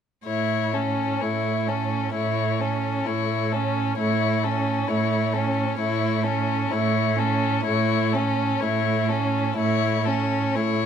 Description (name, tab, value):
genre	classical, slow romantic movement for string quartet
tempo	61-68 BPM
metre	4/4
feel	rubato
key	A major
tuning	A4 = 440 Hz
part	warm violin	melody	0.3-10.9 s	A4 to C#5	-27 LUFS	left 11 dB	none
part	warm violin	second line	0.3-10.9 s	C#4 to E4	-28 LUFS	left 3 dB	none
part	warm viola	accompaniment	0.3-10.9 s	A3 to C#4	-27 LUFS	right 3 dB	none
part	clear cello	bass	0.3-10.9 s	A2	-27 LUFS	right 6 dB	none
room	moderate recital hall reverb, RT60 1.6 s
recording	close, detailed microphones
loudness	-21 LUFS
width	side -8 dB against mid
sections	0.3-10.9 A section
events	none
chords	0.3 A